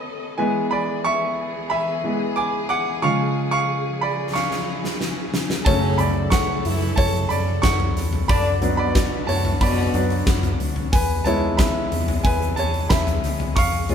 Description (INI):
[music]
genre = piano-driven pop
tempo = 91 BPM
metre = 4/4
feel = straight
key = unclear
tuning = A4 = 439 Hz
[part]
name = clear concert grand piano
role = accompaniment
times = 0.0-13.9 s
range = C#3 to D6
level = -22 LUFS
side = right 1 dB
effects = none
[part]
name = warm studio string section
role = sustained chords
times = 0.0-13.9 s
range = C#3 to D#5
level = -31 LUFS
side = left 1 dB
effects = none
[part]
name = huge arena drum kit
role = drums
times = 4.3-13.9 s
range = hi-hat, kick drum, snare drum, toms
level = -22 LUFS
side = equal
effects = none
[part]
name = mellow French horn section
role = second line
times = 5.7-10.2 s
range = A2 to E4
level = -27 LUFS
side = left 3 dB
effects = none
[part]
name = vintage muted fingered electric bass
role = bass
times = 5.7-13.9 s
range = D2 to F#2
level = -25 LUFS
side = equal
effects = none
[sound]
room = moderate studio reverb, RT60 0.7 s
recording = band playing live in one room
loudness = -19 LUFS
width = side -8 dB against mid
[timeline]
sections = 0.0-13.9 A section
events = grand piano solo 0.0-13.9; drum fill 4.3-5.7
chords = 0.4 E; 3.0 C#; 5.7 F#m; 8.3 Bm/F#; 10.9 E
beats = | 0.39 1.04 1.70 2.36 | 3.02 3.68 4.34 5.00 | 5.66 6.32 6.98 7.63 | 8.29 8.95 9.61 10.27 | 10.93 11.59 12.25 12.91 | 13.56